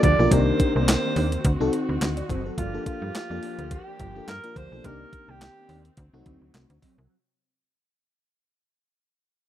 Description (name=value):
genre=early-eighties boogie funk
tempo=106 BPM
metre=4/4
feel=swing 56% on 16ths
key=G minor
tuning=A4 = 439 Hz
part: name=breathy alto saxophone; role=melody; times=0.0-5.9 s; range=F4 to D5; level=-30 LUFS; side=right 3 dB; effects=slapback echo
part: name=FM electric piano with soft pad layer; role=accompaniment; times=0.0-6.8 s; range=A3 to D5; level=-28 LUFS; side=left 2 dB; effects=chorus, tremolo
part: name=muted studio string section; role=sustained chords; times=0.0-7.1 s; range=C3 to G4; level=-34 LUFS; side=left 2 dB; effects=stereo widening
part: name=mellow electric guitar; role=riff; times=0.0-7.1 s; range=Eb3 to F#4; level=-32 LUFS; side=right 1 dB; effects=ensemble chorus
part: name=slap-like FM bass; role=bass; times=0.0-7.1 s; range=F#1 to G2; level=-26 LUFS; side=equal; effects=none
part: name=clean 12-bit digital drum machine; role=drums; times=0.0-7.0 s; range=handclaps, hi-hat, kick drum, snare drum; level=-24 LUFS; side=equal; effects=overdrive
room=little or no reverb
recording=rough home demo mix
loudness=-21 LUFS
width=side -12 dB against mid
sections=0.0-7.1 A section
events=fade-out 0.0-7.1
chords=0.3 Cm9; 1.4 D7b9; 2.6 Gm7; 4.8 Cm9; 6.0 D7b9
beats=| 0.32 0.88 1.45 2.01 | 2.58 3.15 3.71 4.28 | 4.84 5.41 5.97 6.54